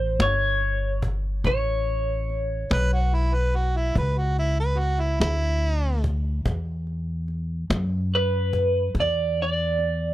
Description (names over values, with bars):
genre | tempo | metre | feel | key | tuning
slow blues | 48 BPM (dotted quarters) | 12/8 | straight | A mixolydian | A4 = 440 Hz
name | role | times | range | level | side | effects
electric guitar through a small old amp | melody | 0.0-10.1 s | B4 to D5 | -24 LUFS | right 1 dB | phaser
upright bass | bass | 0.0-10.1 s | G1 to F#2 | -24 LUFS | equal | none
cajon | drums | 0.2-9.9 s | none | -28 LUFS | equal | none
warm harmonica | second line | 2.7-6.0 s | E4 to B4 | -27 LUFS | right 2 dB | overdrive
room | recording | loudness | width
little or no reverb | dry, close 1970s-style studio recording | -22 LUFS | side -15 dB against mid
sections
0.0-10.1 A section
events
none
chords
0.0 A9; 6.5 E7sus2